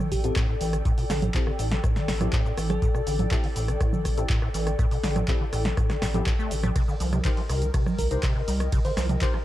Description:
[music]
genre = acid house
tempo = 122 BPM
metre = 4/4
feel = straight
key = A minor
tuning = A4 = 438 Hz
[part]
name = deep acid bass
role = riff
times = 0.0-9.4 s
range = A2 to A3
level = -30 LUFS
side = equal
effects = overdrive, ensemble chorus
[part]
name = punchy analog drum machine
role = drums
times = 0.0-9.4 s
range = congas, handclaps, hi-hat, ride cymbal, rim click, shaker, snare drum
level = -31 LUFS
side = right 2 dB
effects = none
[part]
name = airy breathy pad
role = texture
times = 0.0-9.4 s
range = A4 to G5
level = -34 LUFS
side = left 3 dB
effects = chorus, sidechain pumping
[part]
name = bell-like FM electric piano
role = melody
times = 0.1-3.2, 8.0-9.1 s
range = G4 to C5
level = -35 LUFS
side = right 1 dB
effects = chorus, ping-pong delay
[part]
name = round analog bass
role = bass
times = 0.1-9.2 s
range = A1 to C2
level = -28 LUFS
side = equal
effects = sidechain pumping
[part]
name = electronic kick drum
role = drums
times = 0.1-9.3 s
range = none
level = -26 LUFS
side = equal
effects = none
[part]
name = deep mellow chord stab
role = stabs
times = 0.2-9.3 s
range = C4 to C5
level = -36 LUFS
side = left 5 dB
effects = chorus, dub echo
[sound]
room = light reverb, digital ambience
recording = dark, warm production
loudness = -22 LUFS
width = side -14 dB against mid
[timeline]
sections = 0.0-9.4 A section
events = none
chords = 0.0 Am7; 6.8 Cm7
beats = 0.36 | 0.85 1.35 1.84 2.33 | 2.82 3.31 3.81 4.30 | 4.79 5.28 5.77 6.26 | 6.76 7.25 7.74 8.23 | 8.72 9.22

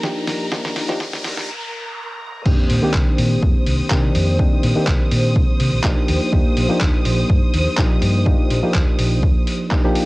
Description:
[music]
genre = filtered disco house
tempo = 124 BPM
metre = 4/4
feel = swing 54% on 16ths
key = Eb major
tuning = A4 = 441 Hz
[part]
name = bright reed electric piano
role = accompaniment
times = 0.0-10.1 s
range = Eb3 to G4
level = -21 LUFS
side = equal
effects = phaser, vintage 12-bit sampler grit, sidechain pumping, low-pass filter, cassette tape
[part]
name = warm symphonic violin section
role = sustained chords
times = 0.0-10.1 s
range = Bb4 to Eb6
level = -28 LUFS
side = equal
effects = sidechain pumping, low-pass filter, cassette tape
[part]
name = hollow-body short-scale fingered electric bass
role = bass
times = 0.0-10.0 s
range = Bb1 to C3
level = -20 LUFS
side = equal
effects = tube saturation, sidechain pumping, high-pass filter, low-pass filter
[part]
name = dusty soul sampler-style drum kit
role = drums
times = 0.0-10.1 s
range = crash cymbal, handclaps, hi-hat, snare drum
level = -26 LUFS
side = equal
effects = cassette tape, sidechain pumping on hats, sidechain pumping on cymbals
[part]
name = electronic kick drum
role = drums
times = 0.0-9.8 s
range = none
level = -18 LUFS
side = equal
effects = high-pass filter on kick, cassette tape, high-pass filter on room
[part]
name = riser, noise sweep and sub drop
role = sound effects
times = 0.0-4.4 s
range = none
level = -30 LUFS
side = equal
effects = none
[sound]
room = little or no reverb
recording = home recording on cassette, high-pass filter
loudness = -15 LUFS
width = side -20 dB against mid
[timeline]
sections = 0.0-2.5 A section; 2.5-10.1 B section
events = build-up 0.0-2.5; drum fill 0.0-1.5; riser 0.0-1.5; filter sweep 0.0-2.5; noise sweep 0.5-2.5; break 1.5-2.5; drop 2.5-10.1; impact 2.5-4.4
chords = 0.0 Ebmaj9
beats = 0.04 | 0.52 1.00 1.49 1.97 | 2.46 2.94 3.42 3.91 | 4.39 4.88 5.36 5.84 | 6.33 6.81 7.29 7.78 | 8.26 8.75 9.23 9.71

